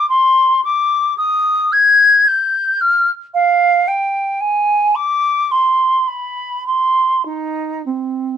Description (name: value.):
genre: classical, baroque-style fantasia for unaccompanied flute.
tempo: 50-56 BPM.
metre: 3/4.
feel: rubato.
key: C minor.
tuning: A4 = 440 Hz.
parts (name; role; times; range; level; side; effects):
mellow hollow silver concert flute; solo; 0.0-8.4 s; C4 to Ab6; -12 LUFS; equal; none.
room: light reverb.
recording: close, detailed microphones.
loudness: -12 LUFS.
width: side -9 dB against mid.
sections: 0.0-8.4 A section.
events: none.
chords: none.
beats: | 0.10 1.18 2.27 | 3.34 4.41 5.51 | 6.67 7.87.